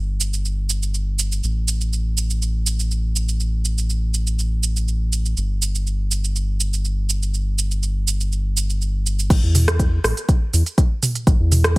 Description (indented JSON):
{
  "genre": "afro house",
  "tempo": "122 BPM",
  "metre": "4/4",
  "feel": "straight",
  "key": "unclear",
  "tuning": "A4 = 440 Hz",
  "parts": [
    { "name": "round analog bass", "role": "bass", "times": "0.0-11.8 s", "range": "G1 to E2", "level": "-20 LUFS", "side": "equal", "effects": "tube saturation, sidechain pumping" },
    { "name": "afro-pop drum kit", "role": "drums", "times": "0.2-11.8 s", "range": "crash cymbal, hi-hat, rim click, shaker, toms", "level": "-22 LUFS", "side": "right 3 dB", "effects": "none" },
    { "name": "electronic kick drum", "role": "drums", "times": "9.3-11.8 s", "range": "none", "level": "-16 LUFS", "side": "equal", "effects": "none" }
  ],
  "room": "little or no reverb",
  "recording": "none",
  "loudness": "-18 LUFS",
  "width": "side -22 dB against mid",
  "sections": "0.0-9.3 A section; 9.3-11.8 B section",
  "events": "drop 9.3-11.8",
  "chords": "none"
}